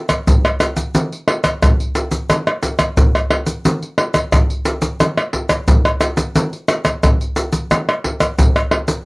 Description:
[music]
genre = samba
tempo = 89 BPM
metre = 4/4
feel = straight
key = none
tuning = none
[part]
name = tube shaker, surdo, pandeiro and tamborim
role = percussion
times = 0.1-9.1 s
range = none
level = -14 LUFS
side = equal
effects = none
[sound]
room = light reverb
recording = dry, close 1970s-style studio recording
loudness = -14 LUFS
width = side -30 dB against mid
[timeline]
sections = 0.0-9.1 A section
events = none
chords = none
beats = 0.28 0.95 1.62 | 2.30 2.97 3.65 4.33 | 5.00 5.68 6.35 7.03 | 7.70 8.38

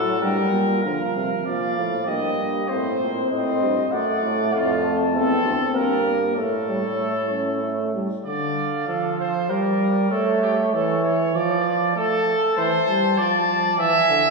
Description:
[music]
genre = classical, imitative canzona for brass ensemble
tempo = 97 BPM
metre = 3/4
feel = straight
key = D minor from 4.5 s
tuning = A4 = 442 Hz
[part]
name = dark cornet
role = melody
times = 0.0-14.3 s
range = C5 to A5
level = -26 LUFS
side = left 3 dB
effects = none
[part]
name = warm trumpet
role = second line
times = 0.0-14.3 s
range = F4 to E5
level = -24 LUFS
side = right 2 dB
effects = none
[part]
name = clear trombone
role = accompaniment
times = 0.0-14.2 s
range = D3 to C#4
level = -23 LUFS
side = right 2 dB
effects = none
[part]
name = warm euphonium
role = bass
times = 0.0-7.9 s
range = D2 to D3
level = -26 LUFS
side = equal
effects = none
[sound]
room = wet concert hall reverb, RT60 1.8 s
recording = heard from further back in the room, small room ambience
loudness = -19 LUFS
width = side -2 dB against mid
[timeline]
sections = 0.8-8.3 A section; 8.3-14.3 B section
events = none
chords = 0.2 Gm; 0.8 Bb; 2.1 Eb/G; 2.7 Adim; 3.9 D/F#; 4.5 Dm/F (rootless); 5.7 Gm; 6.4 A; 8.3 Dm; 9.5 Gm; 10.1 A; 11.3 Dm/F; 12.0 Am; 13.2 Dm/F; 13.8 E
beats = 0.21 | 0.84 1.46 2.07 | 2.69 3.31 3.92 | 4.53 5.13 5.75 | 6.37 6.99 7.62 | 8.25 8.88 9.49 | 10.11 10.73 11.35 | 11.96 12.57 13.18 | 13.79

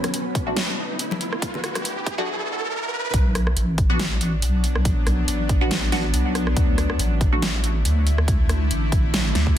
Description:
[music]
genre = deep dubstep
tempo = 140 BPM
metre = 4/4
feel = swing 55% on 16ths, half-time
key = B minor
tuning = A4 = 440 Hz
[part]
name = bowed-like drone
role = sustained chords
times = 0.0-9.6 s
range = D3 to E4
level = -29 LUFS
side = left 1 dB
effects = built-in reverb
[part]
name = dubstep drum kit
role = drums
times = 0.0-9.4 s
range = hi-hat, rim click, snare drum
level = -27 LUFS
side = equal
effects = soft clipping on snare
[part]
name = congas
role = percussion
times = 0.0-2.3 s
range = none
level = -33 LUFS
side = left 4 dB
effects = dub echo
[part]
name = riser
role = sound effects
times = 0.0-3.1 s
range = none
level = -29 LUFS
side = right 2 dB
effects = none
[part]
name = flickering grainy texture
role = texture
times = 0.0-2.3 s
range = B3 to B4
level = -36 LUFS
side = equal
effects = built-in reverb
[part]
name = electronic kick drum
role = drums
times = 0.4-9.5 s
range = none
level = -22 LUFS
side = equal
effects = none
[part]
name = filtered dub chord stab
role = stabs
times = 0.5-7.4 s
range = A3 to F#4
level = -29 LUFS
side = right 1 dB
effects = phaser, wide subtle chorus, dub echo
[part]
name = deep soft wobble bass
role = bass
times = 3.1-9.6 s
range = A1 to D2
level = -21 LUFS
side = equal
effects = chorus, tube saturation
[sound]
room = light reverb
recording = dense, heavily limited modern master, high-pass filter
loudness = -19 LUFS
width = side -11 dB against mid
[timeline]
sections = 0.0-3.1 A section; 3.1-9.6 B section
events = build-up 0.0-3.1; riser 0.0-3.1; filter sweep on synth stab 0.0-3.1; filter sweep on synth drone 0.0-3.1; drop 3.1-9.6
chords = 0.0 D5; 3.1 Bm; 6.6 D5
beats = 0.14 0.56 0.99 | 1.42 1.85 2.28 2.71 | 3.14 3.56 3.99 4.42 | 4.85 5.28 5.71 6.14 | 6.57 6.99 7.42 7.85 | 8.28 8.71 9.14 9.56

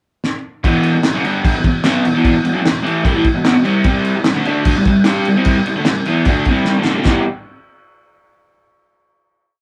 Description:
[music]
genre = garage rock duo or trio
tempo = 150 BPM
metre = 4/4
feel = straight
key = E minor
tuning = A4 = 441 Hz
[part]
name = cloth-damped thuddy drum kit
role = drums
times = 0.2-7.1 s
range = china cymbal, crash cymbal, kick drum, snare drum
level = -19 LUFS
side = equal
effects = none
[part]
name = crunchy overdriven guitar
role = riff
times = 0.6-7.2 s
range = E2 to G4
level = -17 LUFS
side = equal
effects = none
[sound]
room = moderate studio ambience, RT60 0.5 s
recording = band playing live in one room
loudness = -15 LUFS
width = mono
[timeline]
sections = 0.0-0.6 pickup bar; 0.6-7.1 riff; 7.1-8.6 final chord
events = drum fill 0.2-0.6, 6.7-7.1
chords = 0.0 N.C.; 0.6 Em; 3.9 C5; 7.1 Em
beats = 0.24 | 0.64 1.04 1.44 1.84 | 2.25 2.65 3.05 3.45 | 3.85 4.25 4.65 5.06 | 5.46 5.86 6.26 6.66 | 7.06

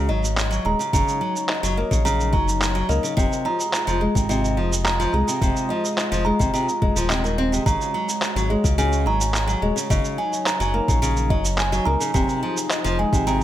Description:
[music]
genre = folktronica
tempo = 107 BPM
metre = 4/4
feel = straight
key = unclear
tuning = A4 = 441 Hz
[part]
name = warm analog pad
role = sustained chords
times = 0.0-13.4 s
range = F3 to Eb5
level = -30 LUFS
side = equal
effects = chorus
[part]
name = nylon-string guitar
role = arpeggios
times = 0.0-13.4 s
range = C3 to C4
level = -25 LUFS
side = left 1 dB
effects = digital delay
[part]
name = round analog bass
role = bass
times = 0.0-13.4 s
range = Eb1 to Db2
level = -24 LUFS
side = equal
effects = none
[part]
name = kalimba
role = second line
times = 0.1-13.4 s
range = Eb5 to Bb5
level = -25 LUFS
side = right 2 dB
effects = digital delay
[part]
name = electronic shaker and handclaps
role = drums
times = 0.2-13.4 s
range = none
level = -27 LUFS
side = right 1 dB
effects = none
[part]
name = electronic kick drum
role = drums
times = 0.9-13.2 s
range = none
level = -23 LUFS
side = equal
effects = overdrive
[sound]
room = light reverb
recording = none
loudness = -19 LUFS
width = side -12 dB against mid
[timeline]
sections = 0.0-13.4 A section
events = none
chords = 0.0 Ab7sus4; 0.9 Ebm7/Gb; 3.2 Fm7; 7.7 Ab7sus4; 9.9 Ebm7/Gb; 12.1 Fm7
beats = 0.37 | 0.93 1.49 2.05 2.61 | 3.17 3.73 4.30 4.86 | 5.42 5.98 6.54 7.10 | 7.66 8.22 8.78 9.34 | 9.90 10.46 11.03 11.59 | 12.15 12.71 13.27

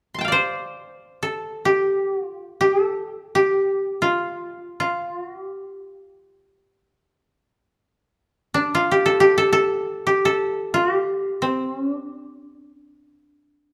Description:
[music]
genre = japanese traditional, Japanese chamber music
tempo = free time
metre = none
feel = none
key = G suspended pentatonic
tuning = A4 = 440 Hz
[part]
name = koto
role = solo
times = 0.1-13.7 s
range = D4 to C6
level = -22 LUFS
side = equal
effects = none
[sound]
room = light reverb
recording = close, detailed microphones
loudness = -21 LUFS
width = mono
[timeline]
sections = 0.0-13.7 A section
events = none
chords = none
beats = free time

